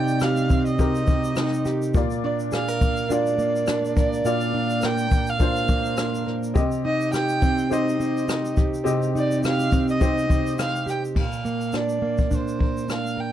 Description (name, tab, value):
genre	acoustic pop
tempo	104 BPM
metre	4/4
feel	swing 55% on 16ths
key	unclear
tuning	A4 = 440 Hz
part	warm violin	melody	0.0-13.3 s	C5 to G5	-27 LUFS	right 2 dB	none
part	clear upright piano	accompaniment	0.0-11.2 s	Bb3 to F5	-30 LUFS	left 4 dB	none
part	fingerpicked plugged-in steel-string acoustic guitar	accompaniment	0.0-13.3 s	Bb2 to Bb4	-24 LUFS	right 2 dB	none
part	jazz brush drum kit	drums	0.1-13.2 s	crash cymbal, kick drum, rim click, shaker	-24 LUFS	left 1 dB	none
room	light reverb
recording	dark, warm production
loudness	-20 LUFS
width	side -11 dB against mid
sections	0.0-11.2 A section; 11.2-13.3 B section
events	none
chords	0.0 Cm; 1.9 Bb; 6.6 Cm; 11.2 Bb